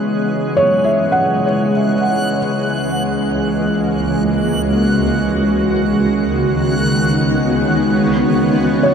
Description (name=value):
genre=ambient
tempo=free time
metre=none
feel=none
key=C# dorian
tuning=A4 = 440 Hz
part: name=shimmering ambient pad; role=sustained chords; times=0.0-8.9 s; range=C#2 to C#5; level=-18 LUFS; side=right 1 dB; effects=chorus, built-in reverb
part: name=felt-muted upright piano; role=arpeggios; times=0.0-2.4, 8.8-8.9 s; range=C#5 to F#5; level=-18 LUFS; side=equal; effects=diffuse ambient delay, shimmer reverb
part: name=bowed-like drone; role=drone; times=0.0-8.9 s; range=C#3 to G#3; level=-17 LUFS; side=equal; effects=built-in reverb
part: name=backwards swelling texture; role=texture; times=0.0-8.9 s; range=F#6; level=-26 LUFS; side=equal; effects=built-in reverb, shimmer reverb
room=wet huge ambient reverb, RT60 8.4 s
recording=in a vast, echoing space, cassette tape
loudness=-14 LUFS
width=side -7 dB against mid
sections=0.0-8.9 A section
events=fade-in on ambient pad 0.0-8.9; fade-in on synth texture 0.0-8.9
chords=0.0 C#m7; 2.4 F#7/C#; 5.1 Badd9/C#; 7.9 C#m7